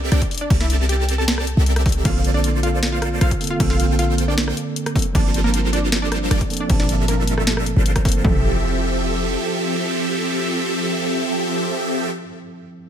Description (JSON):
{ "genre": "future bass", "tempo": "155 BPM", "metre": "4/4", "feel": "half-time", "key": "F major", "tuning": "A4 = 440 Hz", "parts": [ { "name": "wide unison pluck", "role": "melody", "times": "0.0-12.2 s", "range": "A3 to A5", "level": "-27 LUFS", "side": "equal", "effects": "sidechain pumping, ping-pong delay" }, { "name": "supersaw chords", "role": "riff", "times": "0.0-12.1 s", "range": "F3 to A5", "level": "-23 LUFS", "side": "equal", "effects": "phaser, sidechain pumping" }, { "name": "warm 808-style bass", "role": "bass", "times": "0.0-9.4 s", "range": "F1 to C2", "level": "-20 LUFS", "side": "equal", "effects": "sidechain pumping" }, { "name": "trap drum kit", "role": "drums", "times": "0.1-8.2 s", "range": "crash cymbal, hi-hat, rim click, snare drum", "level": "-25 LUFS", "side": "left 1 dB", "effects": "none" }, { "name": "big-room dance drum kit", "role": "drums", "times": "0.2-8.3 s", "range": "kick drum, toms", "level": "-20 LUFS", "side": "equal", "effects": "overdrive" }, { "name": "mellow tine electric piano", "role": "accompaniment", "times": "2.0-12.9 s", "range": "Bb2 to A5", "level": "-26 LUFS", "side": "right 3 dB", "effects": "sidechain pumping" } ], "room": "little or no reverb", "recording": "none", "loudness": "-17 LUFS", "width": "side -9 dB against mid", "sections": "0.0-8.2 A section; 8.2-11.3 B section", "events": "drop 0.0-8.2", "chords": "0.0 C13; 2.1 Bbmaj9; 5.0 Gm11; 8.2 Fmaj7" }